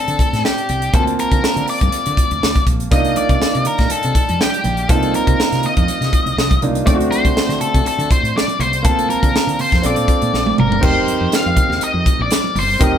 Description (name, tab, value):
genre	polished 1980s jazz-funk pop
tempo	121 BPM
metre	4/4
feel	swing 54% on 16ths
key	C dorian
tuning	A4 = 438 Hz
part	octave-fuzz lead guitar	melody	0.0-13.0 s	G4 to F5	-20 LUFS	left 3 dB	distortion
part	clear baby grand piano	accompaniment	0.0-13.0 s	A3 to A5	-21 LUFS	right 2 dB	none
part	woody fretless electric bass	bass	0.1-13.0 s	F1 to D3	-22 LUFS	equal	none
part	crisp fusion drum kit	drums	0.1-12.9 s	crash cymbal, hi-hat, kick drum, snare drum, toms	-17 LUFS	equal	none
part	congas	percussion	2.9-13.0 s	none	-29 LUFS	right 3 dB	none
room	moderate studio reverb, RT60 0.8 s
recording	band playing live in one room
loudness	-14 LUFS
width	side -9 dB against mid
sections	0.0-10.8 A section; 10.8-13.0 B section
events	drum fill 10.3-10.8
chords	0.0 D7; 0.9 Gm11/D (rootless); 2.9 Cm11; 6.9 D7; 8.8 Bbmaj9/D; 9.8 Bbmaj7; 10.8 F7sus4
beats	0.44 | 0.93 1.43 1.93 2.42 | 2.92 3.41 3.91 4.40 | 4.90 5.39 5.88 6.38 | 6.87 7.37 7.86 8.36 | 8.85 9.34 9.84 10.33 | 10.83 11.32 11.82 12.31 | 12.81